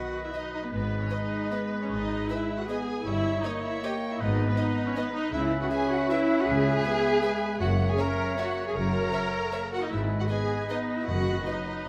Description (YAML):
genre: classical, orchestral ballroom waltz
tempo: 156 BPM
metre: 3/4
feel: uneven beats, rubato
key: unclear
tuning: A4 = 440 Hz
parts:
  - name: rich chamber violin section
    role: melody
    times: 0.0-11.9 s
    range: B4 to A#5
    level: -41 LUFS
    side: equal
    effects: none
  - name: bright oboe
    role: second line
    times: 0.0-11.9 s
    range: B4 to C#5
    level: -39 LUFS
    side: equal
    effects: none
  - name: concert flute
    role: second line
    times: 0.0-11.9 s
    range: D#5 to E5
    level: -38 LUFS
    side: equal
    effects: none
  - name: warm studio viola section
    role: accompaniment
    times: 0.0-11.9 s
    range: B3 to A#4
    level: -33 LUFS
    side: equal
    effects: none
  - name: mellow French horn section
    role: sustained chords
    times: 0.0-11.9 s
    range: D#3 to D#4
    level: -35 LUFS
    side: equal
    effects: none
  - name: warm chamber violin section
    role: second line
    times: 0.3-11.5 s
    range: B4 to E5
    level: -43 LUFS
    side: equal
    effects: none
  - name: rich studio double bass section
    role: bass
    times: 0.7-11.4 s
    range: F#1 to C#2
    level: -36 LUFS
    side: equal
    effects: none
  - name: warm symphonic cello section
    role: bass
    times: 0.7-11.4 s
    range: F#2 to C#3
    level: -37 LUFS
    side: equal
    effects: none
  - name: timpani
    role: percussion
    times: 7.6-8.2, 11.1-11.6 s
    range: F#2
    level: -38 LUFS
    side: equal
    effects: none
room: wet recital hall reverb, RT60 1.7 s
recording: none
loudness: -28 LUFS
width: mono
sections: 0.0-11.9 A section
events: none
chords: 0.0 B; 0.7 G#m; 3.1 D#7/G; 4.2 G#m; 5.3 C#m7; 7.6 F#7; 9.9 G#m; 11.1 B/F#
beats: 0.35 | 0.73 1.12 1.52 | 1.91 2.29 2.69 | 3.06 3.44 3.84 | 4.21 4.58 4.96 | 5.33 5.70 6.10 | 6.48 6.85 7.24 | 7.61 7.99 8.39 | 8.76 9.14 9.54 | 9.91 10.30 10.70 | 11.08 11.47 11.88